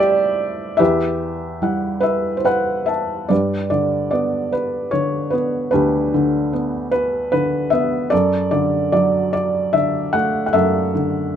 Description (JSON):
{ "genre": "classical, lyrical solo piano", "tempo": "74 BPM", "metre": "3/4", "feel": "rubato", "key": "E minor", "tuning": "A4 = 440 Hz", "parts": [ { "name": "felt-muted upright piano", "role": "solo", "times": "0.0-11.4 s", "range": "D2 to A5", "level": "-16 LUFS", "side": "equal", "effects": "none" } ], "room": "light reverb", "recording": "none", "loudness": "-16 LUFS", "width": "side -9 dB against mid", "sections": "0.0-3.3 A section; 3.3-11.4 B section", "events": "felt piano fill 1.6-3.3", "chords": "0.0 Am7; 0.8 Emadd9; 3.3 G; 8.1 Dadd9/F#" }